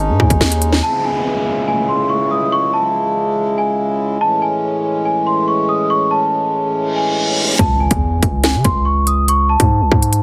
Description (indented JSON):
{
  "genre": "hip hop, drill",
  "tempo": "142 BPM",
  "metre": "4/4",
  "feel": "half-time",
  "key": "C# harmonic minor",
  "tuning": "A4 = 440 Hz",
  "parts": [
    { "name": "large celesta", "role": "melody", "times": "0.0-10.2 s", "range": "G#5 to D#6", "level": "-20 LUFS", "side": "equal", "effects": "low-pass filter" },
    { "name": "pedal harmonium", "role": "sustained chords", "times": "0.0-7.6 s", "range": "C#2 to E4", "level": "-21 LUFS", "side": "equal", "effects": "none" },
    { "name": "hard-hitting 808-style bass", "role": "bass", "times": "0.0-0.8, 7.6-10.2 s", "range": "G#1 to C#3", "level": "-18 LUFS", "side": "equal", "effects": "none" },
    { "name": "drill drum kit", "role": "drums", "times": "0.2-0.8, 7.6-10.2 s", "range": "hi-hat, kick drum, snare drum", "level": "-18 LUFS", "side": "equal", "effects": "none" },
    { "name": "downlifter, reverse cymbal and impact", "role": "sound effects", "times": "0.8-9.3 s", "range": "none", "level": "-26 LUFS", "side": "equal", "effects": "none" }
  ],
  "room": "light reverb",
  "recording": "heavily compressed radio sound",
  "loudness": "-16 LUFS",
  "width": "mono",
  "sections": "0.8-7.6 A section; 7.6-10.2 B section",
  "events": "reverse cymbal 6.9-7.6; impact 7.6-9.3",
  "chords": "0.0 G#sus4; 0.8 C#m; 4.2 Amaj7; 7.6 C#5"
}